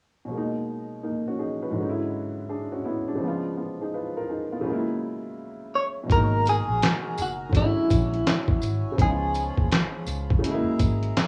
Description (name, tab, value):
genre	lo-fi hip hop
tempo	83 BPM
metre	4/4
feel	swing 64% on 16ths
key	G# minor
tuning	A4 = 440 Hz
part	warm upright piano	accompaniment	0.3-11.3 s	G#2 to B4	-31 LUFS	equal	none
part	clean electric guitar	melody	5.8-10.4 s	E4 to C#5	-29 LUFS	equal	tremolo, tape echo, plate reverb
part	hand-pumped harmonium	sustained chords	6.1-11.3 s	E#4 to B5	-41 LUFS	equal	plate reverb
part	vintage muted fingered electric bass	bass	6.1-11.1 s	F#1 to D#2	-30 LUFS	equal	none
part	dusty soul sampler-style drum kit	drums	6.1-11.3 s	handclaps, hi-hat, kick drum, snare drum	-26 LUFS	equal	none
part	tambourine	percussion	6.5-11.0 s	none	-45 LUFS	equal	none
room	moderate small room reverb, RT60 0.5 s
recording	rough home demo mix, cassette tape, small room ambience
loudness	-26 LUFS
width	mono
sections	0.3-6.1 A section; 6.1-11.3 B section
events	none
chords	0.3 G#m9; 1.8 E13/G#; 3.2 C#7; 4.6 F#9; 6.1 G#m9; 7.5 E13/G#; 9.0 C#7; 10.4 F#9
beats	| 0.31 1.03 1.76 2.48 | 3.20 3.92 4.65 5.37 | 6.09 6.82 7.54 8.26 | 8.98 9.71 10.43 11.15